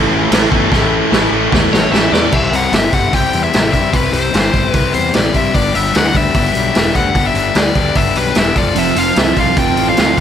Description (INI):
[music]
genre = punk rock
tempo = 149 BPM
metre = 4/4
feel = straight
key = unclear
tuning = A4 = 439 Hz
[part]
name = distorted electric guitar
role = riff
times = 0.0-10.2 s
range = A2 to A4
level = -18 LUFS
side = left 13 dB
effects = distortion
[part]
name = distorted electric guitar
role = riff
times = 0.0-2.3, 8.8-10.2 s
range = F2 to A3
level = -18 LUFS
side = right 16 dB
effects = distortion
[part]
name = high-gain distorted guitar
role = riff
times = 0.0-2.3 s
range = A2 to A3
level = -19 LUFS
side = right 1 dB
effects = distortion
[part]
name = fuzz picked electric bass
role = bass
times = 0.0-10.2 s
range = E1 to G2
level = -19 LUFS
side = right 1 dB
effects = overdrive
[part]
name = raw garage drum kit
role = drums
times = 0.3-10.2 s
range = crash cymbal, hi-hat, kick drum, snare drum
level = -16 LUFS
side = right 1 dB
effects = none
[part]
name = biting lead guitar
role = melody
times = 1.7-10.2 s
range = B4 to G5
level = -17 LUFS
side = left 2 dB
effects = overdrive
[sound]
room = little or no reverb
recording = none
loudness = -11 LUFS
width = side -9 dB against mid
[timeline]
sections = 0.0-2.3 A section; 2.3-10.2 B section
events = drum fill 0.7-2.3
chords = 0.0 A; 2.3 C; 5.5 G; 8.6 F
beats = 0.32 | 0.72 1.12 1.52 1.92 | 2.33 2.73 3.13 3.53 | 3.94 4.34 4.74 5.14 | 5.55 5.95 6.35 6.75 | 7.16 7.56 7.96 8.37 | 8.77 9.17 9.57 9.97